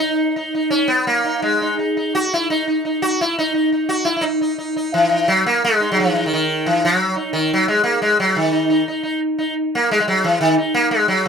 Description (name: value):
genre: indian classical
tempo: 174 BPM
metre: 3/4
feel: straight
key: Eb raga bhairavi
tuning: A4 = 441 Hz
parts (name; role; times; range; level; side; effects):
- sitar; solo; 0.0-11.3 s; Eb3 to Gb4; -16 LUFS; equal; none
room: wet small room reverb, RT60 0.6 s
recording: none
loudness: -16 LUFS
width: side -6 dB against mid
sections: 0.0-4.2 A section; 4.2-11.3 B section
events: speeding up 0.0-11.3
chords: none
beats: | 0.02 0.38 0.73 | 1.08 1.43 1.78 | 2.13 2.48 2.83 | 3.18 3.53 3.88 | 4.22 4.57 4.92 | 5.26 5.61 5.95 | 6.30 6.64 6.99 | 7.33 7.67 8.01 | 8.35 8.69 9.04 | 9.38 9.71 10.05 | 10.39 10.73 11.07